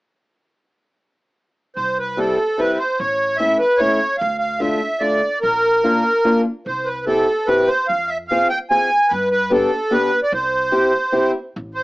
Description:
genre	alpine folk, alpine dance band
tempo	147 BPM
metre	3/4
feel	straight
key	C major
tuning	A4 = 435 Hz
part	accordion	melody	1.8-11.8 s	A4 to Ab5	-17 LUFS	right 1 dB	light tremolo tuning
part	upright bass	bass	1.8-11.8 s	A1 to G2	-34 LUFS	equal	none
part	fingerpicked acoustic archtop guitar	accompaniment	2.2-11.3 s	G3 to Ab4	-19 LUFS	left 1 dB	none
room	light reverb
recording	AM radio sound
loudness	-16 LUFS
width	side -20 dB against mid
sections	1.8-11.6 A section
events	none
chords	1.8 C; 3.0 A; 4.2 Dm; 5.4 Bb; 6.7 C; 7.9 Fm; 9.1 G; 10.3 C

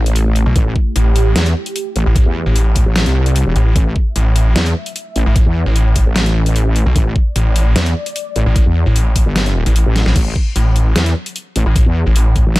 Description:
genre	heavy wobble dubstep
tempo	150 BPM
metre	4/4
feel	half-time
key	unclear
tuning	A4 = 440 Hz
part	lush unison pad	sustained chords	0.0-10.1 s	A3 to E5	-27 LUFS	right 1 dB	chorus, phaser, sidechain pumping
part	wobble bass	bass	0.0-12.6 s	E1 to E2	-14 LUFS	equal	chorus, overdrive
part	dubstep drum kit	drums	0.1-12.6 s	crash cymbal, hi-hat, snare drum	-20 LUFS	equal	overdrive
part	snarling distorted saw bass	bass	0.5-12.4 s	A1 to B1	-12 LUFS	equal	overdrive
part	electronic kick drum	drums	0.6-12.4 s	none	-14 LUFS	equal	overdrive
room	little or no reverb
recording	dark, warm production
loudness	-12 LUFS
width	side -19 dB against mid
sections	0.0-10.2 A section; 10.2-12.6 A section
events	drop 0.0-10.2, 10.2-12.6; drum fill 10.0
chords	0.0 A5

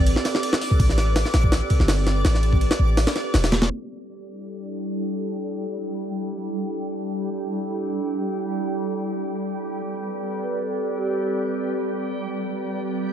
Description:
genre	drum and bass, jungle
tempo	165 BPM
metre	4/4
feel	swing 53% on 16ths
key	E minor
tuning	A4 = 436 Hz
part	warbly tape-like pad	sustained chords	0.0-13.1 s	G3 to D5	-28 LUFS	right 1 dB	chorus, built-in reverb, phaser
part	warm 808-style bass	bass	0.0-3.7 s	E1 to A1	-20 LUFS	equal	none
part	backwards swelling texture	texture	0.0-13.1 s	G3 to D6	-31 LUFS	right 1 dB	built-in reverb
part	jungle sampler-style drum kit	drums	0.1-3.7 s	hi-hat, kick drum, ride cymbal, snare drum	-21 LUFS	equal	studio reverb
part	vibraphone with soft mallets	melody	10.4-11.5 s	G4 to B4	-29 LUFS	right 1 dB	dub echo
room	moderate lush hall reverb, RT60 2.0 s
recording	vinyl crackle, low-pass filter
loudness	-21 LUFS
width	side -10 dB against mid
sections	0.0-3.7 A section; 3.7-13.1 B section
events	none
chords	0.0 Am11; 3.7 Em7; 9.5 Am11

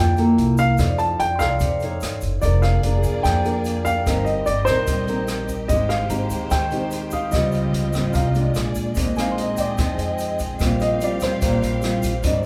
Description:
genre	bossa nova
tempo	147 BPM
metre	4/4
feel	straight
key	Eb major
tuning	A4 = 439 Hz
part	dark baby grand piano	melody	0.0-12.4 s	C5 to A5	-26 LUFS	equal	none
part	barky tine electric piano	accompaniment	0.0-12.4 s	F4 to Eb6	-34 LUFS	equal	none
part	nylon-string guitar	accompaniment	0.0-12.5 s	Ab2 to D5	-26 LUFS	equal	none
part	upright bass	bass	0.0-12.5 s	F1 to F2	-26 LUFS	equal	none
part	open jazz drum kit	drums	0.2-12.3 s	hi-hat, kick drum, rim click	-29 LUFS	equal	none
part	egg shaker	percussion	0.2-12.5 s	none	-44 LUFS	equal	none
part	warm symphonic string section	sustained chords	2.4-12.5 s	Ab3 to F5	-33 LUFS	equal	none
room	wet recital hall reverb, RT60 1.3 s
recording	recorded in a church or concert hall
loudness	-21 LUFS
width	mono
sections	0.0-9.0 A section; 9.0-12.5 B section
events	grand piano solo 9.0-12.5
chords	0.4 C6; 0.8 F13; 2.0 F13b9; 2.4 Bb7/F; 4.1 Eb6/G; 5.7 Abmaj7; 7.3 Dbmaj9#11; 8.6 Bb7; 9.0 Bb9sus4; 10.6 Eb69/Bb (rootless)

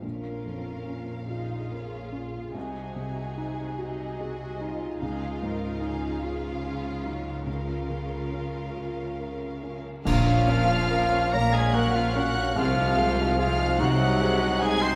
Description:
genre	cinematic, emotional film score for orchestra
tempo	48 BPM (dotted quarters)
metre	6/8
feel	rubato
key	Bb minor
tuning	A4 = 440 Hz
part	warm symphonic violin section	second line	0.0-15.0 s	F4 to C6	-38 LUFS	equal	none
part	felt-muted upright piano	accompaniment	0.0-15.0 s	Bb1 to Db5	-35 LUFS	equal	none
part	rich symphonic viola section	accompaniment	0.0-15.0 s	Gb3 to Db5	-39 LUFS	equal	none
part	rich studio cello section	bass	0.0-14.9 s	Bb2 to Db3	-35 LUFS	equal	none
part	rich symphonic double bass section	bass	0.0-14.9 s	Bb1 to Db2	-35 LUFS	equal	none
part	cymbal swell, clash cymbals and concert bass drum	percussion	7.5-11.7 s	none	-35 LUFS	equal	none
part	clear symphonic violin section	melody	10.1-15.0 s	F6 to C7	-36 LUFS	equal	none
part	clear oboe	second line	10.1-15.0 s	F4 to C5	-34 LUFS	equal	none
part	dark clarinet	second line	10.1-15.0 s	Eb5 to F5	-34 LUFS	equal	none
part	mellow large flute ensemble	second line	10.1-15.0 s	F5 to C6	-34 LUFS	equal	none
part	mellow French horn section	sustained chords	10.1-15.0 s	F3 to C4	-32 LUFS	equal	none
part	timpani	percussion	10.1-11.3 s	Bb2	-35 LUFS	equal	none
room	moderate scoring stage reverb, RT60 1.7 s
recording	none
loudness	-27 LUFS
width	mono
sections	0.0-10.1 A section; 10.1-15.0 B section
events	band accent 10.1-10.9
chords	0.0 Bbm; 2.6 Ab7/C; 5.0 Dbadd9; 7.5 Bbm/Db; 10.1 Bbm; 12.6 Ab7/C

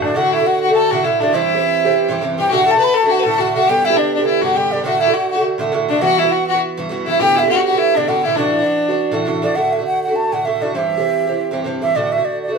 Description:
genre	celtic folk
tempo	204 BPM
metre	4/4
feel	swing 56% on 8ths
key	D mixolydian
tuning	A4 = 445 Hz
part	wooden flute	melody	0.0-12.6 s	B4 to B5	-17 LUFS	right 2 dB	none
part	rich fiddle	second line	0.0-9.3 s	D4 to B4	-19 LUFS	left 5 dB	none
part	Irish bouzouki	accompaniment	0.0-12.6 s	G2 to G4	-19 LUFS	right 3 dB	none
room	moderate studio reverb, RT60 0.7 s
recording	band playing live in one room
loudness	-14 LUFS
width	side -5 dB against mid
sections	0.2-9.6 A section; 9.6-12.6 A section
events	none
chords	0.2 D; 1.3 C; 2.5 D; 3.7 G; 4.9 D; 6.0 Emadd9; 7.2 Gadd9; 8.4 Dadd9; 9.6 D; 10.8 C; 11.9 D

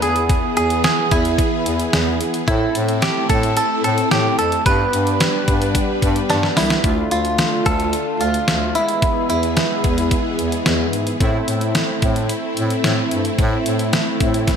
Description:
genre	synth-pop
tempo	110 BPM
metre	4/4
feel	straight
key	A minor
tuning	A4 = 440 Hz
part	direct-recorded clean electric guitar	melody	0.0-10.9 s	D4 to B4	-20 LUFS	right 2 dB	analog chorus, shimmer reverb, digital delay
part	analog synth brass	accompaniment	0.0-14.6 s	G#3 to A4	-24 LUFS	equal	chorus, shimmer reverb
part	string machine, violas	sustained chords	0.0-14.6 s	D3 to B4	-25 LUFS	equal	ensemble chorus, shimmer reverb
part	mellow bass clarinet	bass	0.0-14.5 s	C2 to A2	-22 LUFS	equal	none
part	detuned 8-bit digital drum machine	drums	0.0-14.6 s	hi-hat, kick drum, snare drum	-20 LUFS	equal	gated reverb
room	moderate plate reverb, RT60 1.5 s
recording	bright 1980s-style digital production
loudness	-16 LUFS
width	side -7 dB against mid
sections	0.0-6.8 A section; 6.8-14.6 B section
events	drum fill 6.3-6.8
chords	0.0 E; 2.5 Am; 4.7 G; 6.8 Dm; 8.8 E; 11.2 Am

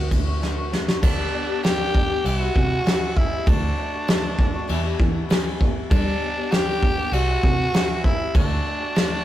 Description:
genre	folk rock and heartland rock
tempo	98 BPM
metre	4/4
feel	straight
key	G major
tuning	A4 = 439 Hz
part	raspy tenor saxophone	melody	0.0-9.2 s	D4 to G4	-26 LUFS	right 1 dB	none
part	picked acoustic archtop guitar	accompaniment	0.0-9.2 s	E2 to G4	-29 LUFS	left 4 dB	none
part	fingered electric bass	bass	0.0-8.6 s	G1 to E3	-25 LUFS	equal	none
part	soft brush drum kit	drums	0.1-9.1 s	crash cymbal, kick drum, ride cymbal, snare drum	-21 LUFS	equal	none
room	moderate small room reverb, RT60 0.5 s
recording	rough rehearsal-room recording, warm saturation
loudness	-19 LUFS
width	side -13 dB against mid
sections	0.0-1.0 A section; 1.0-9.2 B section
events	drum fill 0.4-1.0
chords	0.0 D; 1.0 G; 2.2 C; 3.5 D; 4.7 Em; 5.9 G; 7.1 C; 8.3 D

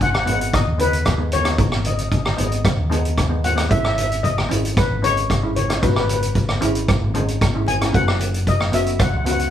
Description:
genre	calypso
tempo	113 BPM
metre	4/4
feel	straight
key	unclear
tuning	A4 = 437 Hz
part	steel pan	melody	0.0-9.5 s	B4 to G#5	-23 LUFS	left 3 dB	none
part	fingered electric bass	bass	0.0-9.5 s	F#1 to D#2	-22 LUFS	equal	none
part	street-band drum kit	drums	0.0-9.5 s	hi-hat, kick drum, rim click	-20 LUFS	equal	none
part	congas	percussion	0.1-9.4 s	none	-31 LUFS	right 2 dB	none
part	steel pan	accompaniment	0.3-9.5 s	G#3 to F#4	-26 LUFS	equal	none
room	moderate studio reverb, RT60 0.7 s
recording	band playing live in one room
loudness	-17 LUFS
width	side -10 dB against mid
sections	0.0-9.5 A section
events	none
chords	0.0 G#m; 3.7 C#madd9/G#; 7.9 F#sus4

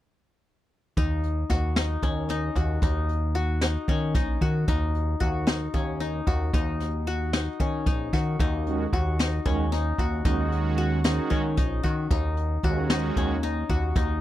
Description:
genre	progressive instrumental, band music in an uneven meter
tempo	226 BPM (eighths)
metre	7/8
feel	straight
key	Eb minor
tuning	A4 = 439 Hz
part	qanun	arpeggios	1.0-14.2 s	Db4 to Gb4	-30 LUFS	left 5 dB	none
part	chorused synth bass	bass	1.0-14.2 s	Bb1 to Eb3	-27 LUFS	equal	none
part	jazz brush drum kit	drums	1.0-14.1 s	hi-hat, kick drum, snare drum	-26 LUFS	equal	none
part	brassy analog pad	accompaniment	8.7-13.4 s	Eb3 to Gb4	-30 LUFS	right 8 dB	chorus
room	little or no reverb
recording	dry, close 1970s-style studio recording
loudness	-23 LUFS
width	side -14 dB against mid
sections	1.0-14.2 A section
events	none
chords	1.0 Ebm7

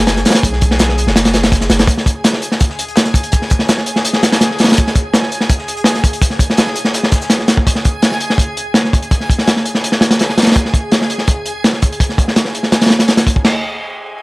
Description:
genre	drum and bass, jungle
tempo	166 BPM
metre	4/4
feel	straight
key	unclear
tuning	A4 = 440 Hz
part	long sustained 808-style bass	bass	0.0-1.9 s	F#1 to B1	-17 LUFS	equal	none
part	backwards swelling texture	texture	0.0-13.5 s	G#4 to G#5	-24 LUFS	equal	built-in reverb
part	crunchy breakbeat drum kit	drums	0.1-13.5 s	crash cymbal, hi-hat, kick drum, snare drum	-11 LUFS	equal	none
part	crunchy breakbeat drum kit	drums	0.1-7.6 s	hi-hat, shaker, snare drum	-26 LUFS	left 1 dB	none
room	little or no reverb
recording	dry, gritty hardware recording, vinyl crackle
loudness	-11 LUFS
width	side -23 dB against mid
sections	0.0-13.4 A section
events	none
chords	0.0 B5; 1.9 N.C.

